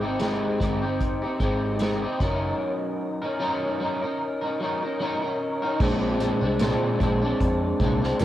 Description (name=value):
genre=indie pop, bedroom pop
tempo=75 BPM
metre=4/4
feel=swing 55% on 16ths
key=unclear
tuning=A4 = 440 Hz
part: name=electric guitar at the edge of break-up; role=accompaniment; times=0.0-8.2 s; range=Bb2 to Bb4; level=-24 LUFS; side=equal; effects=ensemble chorus, vibrato effect, cassette tape
part: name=vintage muted picked electric bass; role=bass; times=0.0-8.2 s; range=F1 to F2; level=-29 LUFS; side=equal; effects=none
part: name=unplugged drum kit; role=drums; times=0.2-8.2 s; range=crash cymbal, hi-hat, kick drum, snare drum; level=-28 LUFS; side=equal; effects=cassette tape
room=light reverb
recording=home recording on cassette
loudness=-23 LUFS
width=side -13 dB against mid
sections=0.0-5.8 A section; 5.8-8.2 B section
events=break 2.6-5.8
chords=0.0 Abmaj7; 2.2 Gb6; 5.8 Bb9